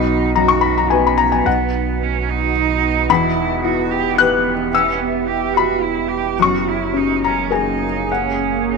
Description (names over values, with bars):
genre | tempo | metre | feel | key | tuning
neoclassical piano and strings | 109 BPM | 3/4 | rubato | B major | A4 = 440 Hz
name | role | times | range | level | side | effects
rich cello | second line | 0.0-8.8 s | B3 to G4 | -21 LUFS | right 14 dB | none
felt-muted upright piano | accompaniment | 0.0-8.8 s | B1 to F#6 | -17 LUFS | left 8 dB | none
deep dark ambient pad | sustained chords | 0.0-8.8 s | A#3 to G#4 | -23 LUFS | right 4 dB | chorus, built-in reverb
punchy sub bass | bass | 0.0-8.8 s | E1 to B1 | -26 LUFS | right 3 dB | none
room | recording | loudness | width
moderate echo chamber reverb, RT60 2.1 s | 1960s-style stereo with parts hard left and right | -15 LUFS | side -4 dB against mid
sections
0.0-8.8 A section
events
none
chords
0.0 B; 3.1 Em; 6.4 F#add9